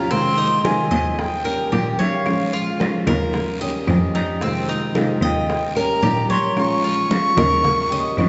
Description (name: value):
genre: latin, Cuban son and guajira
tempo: 111 BPM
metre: 4/4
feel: straight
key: unclear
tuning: A4 = 440 Hz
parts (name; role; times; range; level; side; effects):
- jazz flute; melody; 0.0-8.3 s; F5 to Db6; -24 LUFS; equal; none
- nylon-string guitar; accompaniment; 0.0-8.3 s; C3 to G4; -27 LUFS; equal; none
- Cuban tres; arpeggios; 0.0-8.3 s; C4 to Eb5; -27 LUFS; equal; none
- clear cello; bass; 0.0-8.3 s; Eb2 to Bb2; -27 LUFS; equal; none
- bongos; percussion; 0.1-8.3 s; none; -33 LUFS; equal; none
- congas; percussion; 0.1-8.3 s; none; -29 LUFS; equal; none
- guiro; percussion; 0.1-8.3 s; none; -36 LUFS; equal; none
- claves; percussion; 0.6-8.3 s; none; -43 LUFS; equal; none
room: wet church reverb, RT60 3.1 s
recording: recorded in a church or concert hall, nothing above 7.9 kHz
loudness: -20 LUFS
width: mono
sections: 0.1-8.3 A section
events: none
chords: 0.1 Fm7; 1.2 Eb7; 2.3 Bbm7; 3.3 Eb7; 4.4 Fm7; 5.5 Eb7; 6.6 Bbm7; 7.6 Eb7